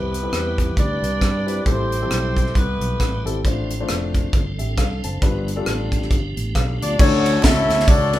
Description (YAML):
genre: uptempo gospel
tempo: 135 BPM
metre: 4/4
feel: swing 57% on 8ths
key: unclear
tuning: A4 = 439 Hz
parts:
  - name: warm horn section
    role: melody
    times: 0.0-3.4, 6.8-8.2 s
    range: B3 to E5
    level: -22 LUFS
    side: left 1 dB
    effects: none
  - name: dark grand piano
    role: accompaniment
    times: 0.0-8.2 s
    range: G2 to A5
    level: -26 LUFS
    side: left 4 dB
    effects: none
  - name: tonewheel organ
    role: sustained chords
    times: 0.0-7.0 s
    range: E3 to B4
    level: -32 LUFS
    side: right 4 dB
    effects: fast rotary speaker, chorus vibrato
  - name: fingered electric bass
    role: bass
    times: 0.0-8.2 s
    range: F1 to G2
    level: -24 LUFS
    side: right 1 dB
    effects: none
  - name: tight funk drum kit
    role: drums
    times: 0.1-8.2 s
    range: crash cymbal, hi-hat, kick drum, ride cymbal, rim click, snare drum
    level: -20 LUFS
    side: equal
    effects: none
  - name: tambourine and handclaps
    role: percussion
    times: 7.0-8.2 s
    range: none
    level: -33 LUFS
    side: right 1 dB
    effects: none
room: light reverb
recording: band playing live in one room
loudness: -17 LUFS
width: side -14 dB against mid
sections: 0.0-7.0 A section; 7.0-8.2 B section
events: none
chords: 0.0 Cmaj7; 1.7 Am7; 3.4 Dm7; 5.2 G7; 7.0 Dmaj7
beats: 0.33 0.77 1.22 | 1.66 2.11 2.55 3.00 | 3.44 3.89 4.33 4.78 | 5.22 5.66 6.11 6.55 | 6.99 7.43 7.88